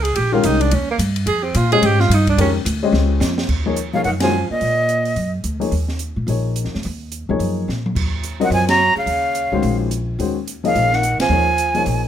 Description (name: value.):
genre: modal jazz.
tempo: 215 BPM.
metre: 4/4.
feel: swing 60% on 8ths.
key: Eb dorian from 3.5 s.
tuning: A4 = 439 Hz.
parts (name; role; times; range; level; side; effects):
breathy tenor saxophone; second line; 0.0-5.3, 8.4-12.1 s; Bb2 to G#4; -21 LUFS; right 5 dB; none.
upright bass; bass; 0.0-12.1 s; A#1 to A#2; -20 LUFS; equal; none.
open jazz drum kit; drums; 0.0-11.9 s; crash cymbal, hi-hat, kick drum, ride cymbal, snare drum, toms; -26 LUFS; equal; none.
dark baby grand piano; accompaniment; 0.3-12.1 s; D#3 to D#5; -21 LUFS; left 6 dB; none.
breathy bright jazz flute; melody; 3.9-5.3, 8.4-12.1 s; Eb5 to Bb5; -18 LUFS; right 1 dB; none.
room: light reverb.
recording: none.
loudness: -16 LUFS.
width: side -10 dB against mid.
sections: 0.0-3.5 A section; 3.5-12.1 B section.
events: tenor saxophone solo 0.0-3.5; drum fill 2.9-3.5, 7.7; band accent 4.2, 8.7, 11.2.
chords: 0.0 A#m11; 3.5 Ebm11.